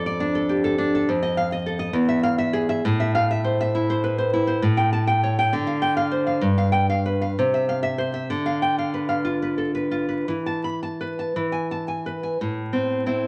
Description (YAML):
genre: romantic piece for solo classical guitar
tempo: 55-70 BPM (dotted quarters)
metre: 6/8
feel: rubato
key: A minor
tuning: A4 = 440 Hz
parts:
  - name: nylon-string guitar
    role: solo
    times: 0.0-13.3 s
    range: E2 to B5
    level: -23 LUFS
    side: equal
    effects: none
room: wet large studio reverb, RT60 0.9 s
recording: tape saturation, vinyl crackle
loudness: -23 LUFS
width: mono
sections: 0.0-12.4 A section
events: none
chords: 0.0 F6; 1.1 F7; 2.0 E; 2.8 Am; 4.6 A7; 5.5 Dm7; 6.4 G7; 7.4 C; 8.3 Bdim/D; 10.3 Esus4; 11.4 E; 12.4 Am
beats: 0.21 | 1.09 1.96 | 2.84 3.73 | 4.62 5.52 | 6.42 7.37 | 8.30 9.25 | 10.28 11.36 | 12.40